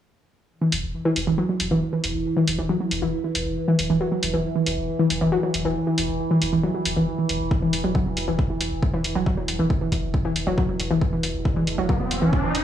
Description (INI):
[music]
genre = driving peak-time techno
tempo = 137 BPM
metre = 4/4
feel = straight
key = unclear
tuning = A4 = 437 Hz
[part]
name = overtone-sweeping drone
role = drone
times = 0.9-12.6 s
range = E3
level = -29 LUFS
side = right 1 dB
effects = chorus, built-in reverb, sidechain pumping
[part]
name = warbly dusty pluck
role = riff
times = 0.6-12.5 s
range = E3 to F#3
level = -23 LUFS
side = equal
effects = chorus, overdrive, sidechain pumping, tape echo
[part]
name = saturated sub bass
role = bass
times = 0.7-12.6 s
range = E1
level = -32 LUFS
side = equal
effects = tube saturation, sidechain pumping, low-pass filter
[part]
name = electronic hi-hat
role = drums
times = 0.7-12.6 s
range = none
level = -28 LUFS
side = equal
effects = none
[part]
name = electronic kick drum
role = drums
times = 7.5-12.4 s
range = none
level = -23 LUFS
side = equal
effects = none
[part]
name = riser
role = sound effects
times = 11.4-12.6 s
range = none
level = -27 LUFS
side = right 1 dB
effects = none
[sound]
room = light reverb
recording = dry, gritty hardware recording, studio reverb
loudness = -20 LUFS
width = side -10 dB against mid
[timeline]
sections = 0.5-12.6 A section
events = filter sweep on synth arpeggio sound 0.5-12.6; riser 11.4-12.6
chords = none